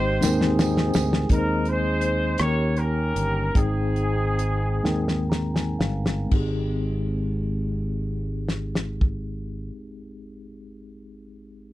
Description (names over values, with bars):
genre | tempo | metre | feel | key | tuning
slow gospel | 37-56 BPM (dotted quarters) | 6/8 | straight | Ab major | A4 = 439 Hz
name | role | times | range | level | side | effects
warm horn section | melody | 0.0-5.3 s | C4 to Db5 | -26 LUFS | right 1 dB | none
mellow tine electric piano | accompaniment | 0.0-11.7 s | Ab1 to Bb5 | -29 LUFS | left 2 dB | medium stereo tremolo
fingered electric bass | bass | 0.0-9.7 s | G1 to Eb2 | -26 LUFS | equal | none
warm soul drum kit | drums | 0.2-9.3 s | crash cymbal, hi-hat, kick drum, rim click, snare drum | -24 LUFS | equal | none
tambourine | percussion | 0.2-1.3 s | none | -35 LUFS | right 14 dB | none
room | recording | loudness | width
little or no reverb | none | -21 LUFS | side -16 dB against mid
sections
0.0-1.3 A section; 1.3-6.3 B section; 6.3-11.7 C section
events
drum fill 0.2-1.3, 4.8-6.3; slowing down 1.3-6.3; tine electric piano fill 4.8-6.3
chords
0.0 Abmaj7; 1.3 Ab/Eb; 2.4 Eb7; 3.6 Abmaj7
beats
0.23 | 1.30 2.40 | 3.56 4.84 | 6.32 7.93 | 9.55 11.17